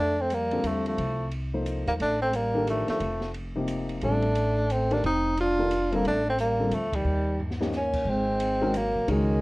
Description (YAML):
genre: modal jazz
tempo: 178 BPM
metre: 3/4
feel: swing 62% on 8ths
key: F mixolydian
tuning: A4 = 441 Hz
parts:
  - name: mellow tenor saxophone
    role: melody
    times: 0.0-9.4 s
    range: G3 to F4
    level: -26 LUFS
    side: equal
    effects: none
  - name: breathy trombone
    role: second line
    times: 0.0-9.4 s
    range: Eb3 to D4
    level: -33 LUFS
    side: right 2 dB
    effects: none
  - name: upright bass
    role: bass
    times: 0.0-9.4 s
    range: F1 to F2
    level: -30 LUFS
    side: equal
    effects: none
  - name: open jazz drum kit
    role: drums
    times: 0.3-9.2 s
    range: crash cymbal, hi-hat, kick drum, ride cymbal, snare drum, toms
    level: -40 LUFS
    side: equal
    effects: none
  - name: warm grand piano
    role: accompaniment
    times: 0.5-9.4 s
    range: C3 to C5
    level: -30 LUFS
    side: left 2 dB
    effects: none
room: moderate studio reverb, RT60 0.5 s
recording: worn, warbling old tape, cassette tape, warbly pitch drift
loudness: -24 LUFS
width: side -22 dB against mid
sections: 0.0-8.1 A section; 8.1-9.4 B section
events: band accent 6.9; drum fill 7.4-7.7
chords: 0.0 F13; 7.1 Eb7; 8.1 Ab7sus4